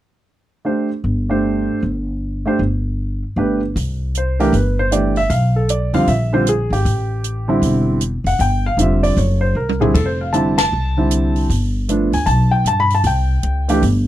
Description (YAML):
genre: jazz piano trio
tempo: 155 BPM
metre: 4/4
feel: swing 64% on 8ths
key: unclear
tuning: A4 = 438 Hz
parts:
  - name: warm concert grand piano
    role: melody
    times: 0.6-13.8 s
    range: D3 to B5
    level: -17 LUFS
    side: right 1 dB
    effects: none
  - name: upright bass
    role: bass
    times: 1.0-14.1 s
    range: E1 to G2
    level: -18 LUFS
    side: equal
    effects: none
  - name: compact cocktail drum kit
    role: drums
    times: 3.8-13.9 s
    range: hi-hat, kick drum, ride cymbal, snare drum, toms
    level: -23 LUFS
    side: equal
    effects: none
room: little or no reverb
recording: dry, close 1970s-style studio recording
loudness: -15 LUFS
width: side -13 dB against mid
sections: 0.7-3.8 A section; 3.8-14.1 B section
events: drum fill 9.6-9.9; band accent 10.5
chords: 0.7 Gsus24; 3.8 Cadd9; 5.3 Bdim; 6.1 Bb7sus2; 6.8 Am7; 8.4 G5; 9.2 F#(#11); 9.9 F69; 11.5 Gadd9; 13.0 C5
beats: | 0.66 1.04 1.43 1.82 | 2.21 2.60 2.98 3.37 | 3.76 4.14 4.53 4.92 | 5.30 5.69 6.08 6.46 | 6.85 7.23 7.62 8.01 | 8.39 8.78 9.17 9.55 | 9.94 10.33 10.72 11.10 | 11.49 11.88 12.27 12.66 | 13.04 13.43 13.82